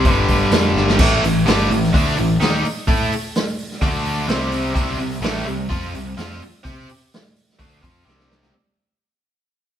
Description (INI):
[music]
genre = blues rock power trio and southern rock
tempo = 128 BPM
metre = 4/4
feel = straight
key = unclear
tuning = A4 = 440 Hz
[part]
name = mellow harmonica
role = melody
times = 0.0-0.6 s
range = B4 to C5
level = -26 LUFS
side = equal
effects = overdrive
[part]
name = tight distorted guitar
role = riff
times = 0.0-8.5 s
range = G2 to C5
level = -19 LUFS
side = equal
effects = distortion
[part]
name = growling picked electric bass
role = bass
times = 0.0-8.5 s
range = G1 to C3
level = -24 LUFS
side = equal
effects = overdrive
[part]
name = raw garage drum kit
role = drums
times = 0.0-8.5 s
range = crash cymbal, hi-hat, kick drum, snare drum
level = -20 LUFS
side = equal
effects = none
[sound]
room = moderate stone room reverb, RT60 1.2 s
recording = band playing live in one room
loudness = -16 LUFS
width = side -10 dB against mid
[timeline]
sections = 0.0-1.0 A section; 1.0-8.5 B section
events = drum fill 0.8, 8.1-8.5; fade-out 1.0-8.5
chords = 0.1 G; 1.0 A5; 3.8 D5; 4.3 C5